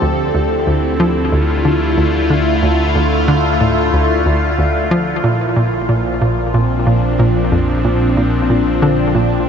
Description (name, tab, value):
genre	ambient, sequencer-driven space music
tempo	92 BPM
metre	4/4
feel	straight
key	D minor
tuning	A4 = 440 Hz
part	phased analog pad	sustained chords	0.0-9.5 s	Bb2 to A4	-15 LUFS	equal	phaser, chorus
part	hollow square pluck	riff	0.0-9.4 s	D2 to F3	-17 LUFS	equal	chorus, ping-pong delay
part	warm sub bass	bass	0.0-9.5 s	Bb1 to D2	-21 LUFS	equal	none
room	wet huge ambient reverb, RT60 7.3 s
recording	nothing above 7.6 kHz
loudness	-12 LUFS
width	side -7 dB against mid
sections	0.0-9.5 A section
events	none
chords	0.0 Dm; 5.2 Bb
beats	| 0.02 0.67 1.32 1.98 | 2.63 3.28 3.93 4.58 | 5.24 5.89 6.54 7.19 | 7.85 8.50 9.15